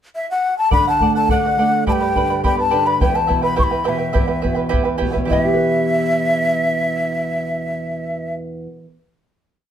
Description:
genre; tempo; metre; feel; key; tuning
andean folk, Andean ensemble; 105 BPM; 2/4; straight; E minor; A4 = 440 Hz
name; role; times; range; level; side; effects
breathy large quena; melody; 0.2-8.3 s; E5 to C#6; -18 LUFS; left 2 dB; none
charango; accompaniment; 0.7-9.0 s; E4 to B5; -22 LUFS; right 5 dB; none
nylon-string guitar; accompaniment; 0.7-9.1 s; E2 to B4; -22 LUFS; right 1 dB; none
bombo; percussion; 0.7-5.6 s; none; -22 LUFS; left 1 dB; none
room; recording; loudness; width
moderate studio reverb, RT60 0.6 s; band playing live in one room; -16 LUFS; side -9 dB against mid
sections
0.0-0.7 pickup bar; 0.7-5.3 A section; 5.3-7.6 final chord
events
none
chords
0.0 N.C.; 0.7 D; 1.9 G; 3.0 Em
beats
0.15 | 0.73 1.30 | 1.87 2.44 | 3.01 3.59 | 4.16 4.73 | 5.30 5.87 | 6.45 7.02

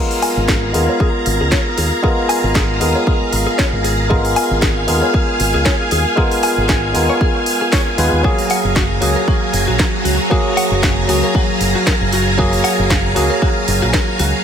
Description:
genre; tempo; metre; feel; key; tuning
nu-disco, nu disco; 116 BPM; 4/4; swing 55% on 16ths; G# dorian; A4 = 440 Hz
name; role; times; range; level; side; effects
barky tine electric piano; accompaniment; 0.0-14.4 s; F#3 to B4; -19 LUFS; right 1 dB; sidechain pumping, low-pass filter, diffuse ambient delay
string machine, full ensemble; sustained chords; 0.0-14.4 s; F#3 to A#5; -19 LUFS; equal; ensemble chorus, sidechain pumping
house drum kit; drums; 0.1-14.3 s; hi-hat, snare drum; -22 LUFS; equal; none
direct-recorded clean electric guitar; riff; 0.2-14.3 s; F#4 to G#5; -24 LUFS; left 3 dB; wide subtle chorus, low-pass filter, diffuse ambient delay
fingered electric bass with an envelope filter; bass; 0.4-14.3 s; F#1 to D#2; -19 LUFS; equal; none
electronic kick drum; drums; 0.5-14.1 s; none; -17 LUFS; equal; none
room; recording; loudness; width
moderate plate reverb, RT60 1.5 s; dreamy mix soaked in reverb; -13 LUFS; side -8 dB against mid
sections
0.0-14.4 A section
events
filter sweep on clean electric guitar 0.0-14.4; filter sweep on tine electric piano 0.0-14.4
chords
0.0 G#m69; 8.2 F#maj9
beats
0.49 1.00 1.52 | 2.04 2.56 3.07 3.59 | 4.11 4.63 5.14 5.66 | 6.18 6.70 7.21 7.73 | 8.25 8.76 9.28 9.80 | 10.32 10.83 11.35 11.87 | 12.38 12.90 13.42 13.94

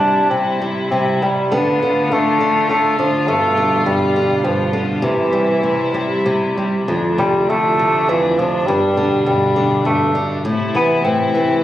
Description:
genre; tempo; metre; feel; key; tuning
children's music, lullaby; 101 BPM; 3/4; rubato; C major; A4 = 439 Hz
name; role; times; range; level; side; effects
warm bassoon; melody; 0.0-11.6 s; E3 to D4; -16 LUFS; equal; none
flamenco guitar; accompaniment; 0.0-11.6 s; F2 to G3; -19 LUFS; equal; none
rich chamber string section; sustained chords; 0.0-11.6 s; A2 to F4; -22 LUFS; left 1 dB; none
room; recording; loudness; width
moderate recital hall reverb, RT60 1.6 s; recorded on a phone in the room, club reverb; -14 LUFS; side -13 dB against mid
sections
0.0-6.9 A section; 6.9-11.6 B section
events
none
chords
0.0 C; 1.5 Dm; 3.3 G7; 5.0 C; 6.9 F6; 8.7 G; 10.4 Am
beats
0.31 0.92 | 1.52 2.11 2.70 | 3.28 3.86 4.44 | 5.02 5.62 6.25 | 6.87 7.49 8.09 | 8.68 9.27 9.85 | 10.45 11.05

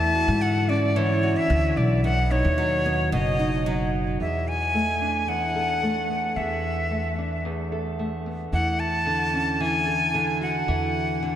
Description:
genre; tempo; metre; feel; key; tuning
folktronica; 111 BPM; 4/4; straight; E mixolydian; A4 = 438 Hz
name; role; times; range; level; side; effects
breathy bright jazz flute; melody; 0.0-11.4 s; C#5 to A5; -25 LUFS; equal; vintage 12-bit sampler grit, tape echo
nylon-string guitar; arpeggios; 0.0-11.4 s; E2 to A4; -27 LUFS; equal; low-pass filter
upright bass; bass; 0.0-11.4 s; F#1 to G#2; -27 LUFS; equal; none
room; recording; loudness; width
wet cathedral reverb, RT60 5.5 s; dreamy mix soaked in reverb; -21 LUFS; side -10 dB against mid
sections
0.0-4.2 A section; 4.2-11.4 B section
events
filter sweep on nylon-string guitar 4.2-11.4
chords
0.0 Dmaj7/E; 2.0 B; 4.2 E7sus4; 8.5 Dmaj7/E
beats
0.42 0.96 1.50 | 2.04 2.58 3.12 3.66 | 4.20 4.75 5.29 5.83 | 6.37 6.91 7.45 7.99 | 8.53 9.07 9.61 10.15 | 10.69 11.23

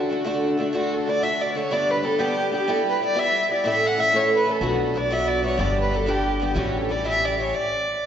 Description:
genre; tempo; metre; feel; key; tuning
celtic folk, Celtic jig; 124 BPM (dotted quarters); 6/8; straight; D major; A4 = 439 Hz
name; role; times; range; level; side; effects
dark fiddle; melody; 0.0-8.1 s; F#4 to F#5; -22 LUFS; left 1 dB; none
picked twelve-string acoustic guitar; accompaniment; 0.0-7.5 s; G2 to A4; -24 LUFS; right 1 dB; none
upright bass; bass; 4.6-7.5 s; G1 to B1; -28 LUFS; left 1 dB; none
room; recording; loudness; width
wet concert hall reverb, RT60 2.3 s; recorded in a church or concert hall, nothing above 7.7 kHz; -20 LUFS; side -9 dB against mid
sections
0.7-8.1 A section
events
stop 7.5-8.1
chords
0.0 D; 1.7 G; 2.7 Em/G; 3.6 A; 4.6 Bm; 5.6 G; 6.6 A7; 7.5 N.C.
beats
0.25 | 0.73 1.22 | 1.70 2.19 | 2.67 3.16 | 3.65 4.13 | 4.62 5.10 | 5.59 6.08 | 6.56 7.05 | 7.53 8.02

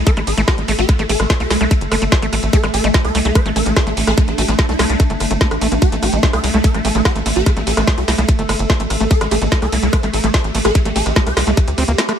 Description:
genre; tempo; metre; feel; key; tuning
psychedelic trance; 146 BPM; 4/4; straight; A minor; A4 = 438 Hz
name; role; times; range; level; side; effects
swarming drone; sustained chords; 0.0-12.2 s; A3 to A4; -23 LUFS; right 1 dB; built-in reverb, sidechain pumping
tight sequencer bass; bass; 0.0-11.9 s; G1 to D2; -19 LUFS; equal; none
swarming rave lead; melody; 0.1-11.5 s; A3 to C5; -22 LUFS; equal; chorus, phaser, sidechain pumping, digital delay
overdriven acid bass; riff; 0.1-12.1 s; A3 to C4; -24 LUFS; equal; distortion, auto-pan, cassette tape, sidechain pumping, dub echo
drum and bass drum kit; drums; 0.1-12.2 s; hi-hat, ride cymbal, rim click, snare drum; -21 LUFS; equal; none
electronic kick drum; drums; 0.1-11.7 s; none; -14 LUFS; equal; none
room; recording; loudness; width
little or no reverb; none; -13 LUFS; side -8 dB against mid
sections
0.0-12.2 A section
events
none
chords
0.0 A5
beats
0.07 0.48 | 0.89 1.30 1.71 2.12 | 2.53 2.94 3.35 3.77 | 4.18 4.59 5.00 5.41 | 5.82 6.23 6.64 7.05 | 7.46 7.88 8.29 8.70 | 9.11 9.52 9.93 10.34 | 10.75 11.16 11.57 11.98

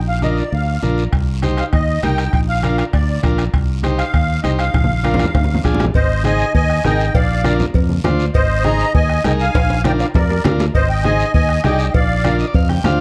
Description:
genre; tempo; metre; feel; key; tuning
latin, cumbia; 200 BPM; 4/4; straight; unclear; A4 = 440 Hz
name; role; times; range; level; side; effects
fingered electric bass; bass; 0.0-13.0 s; Ab1 to F2; -21 LUFS; equal; none
musette accordion; melody; 0.1-12.4 s; Bb4 to Bb5; -23 LUFS; equal; none
overdriven combo organ; accompaniment; 0.2-13.0 s; D4 to G5; -25 LUFS; equal; spring reverb
congas; percussion; 0.2-13.0 s; none; -25 LUFS; equal; none
guiro; percussion; 0.2-13.0 s; none; -38 LUFS; equal; none
bombo; percussion; 1.1-13.0 s; none; -21 LUFS; equal; none
timbales and cowbell; percussion; 1.1-13.0 s; none; -28 LUFS; equal; none
room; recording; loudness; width
light reverb; dark, warm production; -16 LUFS; mono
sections
0.0-5.9 A section; 5.9-13.0 B section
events
drum fill 4.7-5.9, 9.5-10.7; transistor combo organ fill 12.2-13.0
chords
0.0 Bb; 1.1 Cm; 2.3 Bb; 3.5 Cm; 4.7 Bb; 5.9 Ab; 7.1 Bb; 8.3 Ab; 9.5 Bb; 10.7 Ab; 11.9 Bb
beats
0.22 0.53 0.83 | 1.13 1.43 1.73 2.03 | 2.33 2.63 2.94 3.24 | 3.54 3.84 4.14 4.44 | 4.74 5.04 5.34 5.64 | 5.95 6.25 6.55 6.85 | 7.15 7.45 7.75 8.05 | 8.35 8.65 8.95 9.25 | 9.55 9.85 10.15 10.45 | 10.75 11.05 11.35 11.65 | 11.95 12.25 12.55 12.85

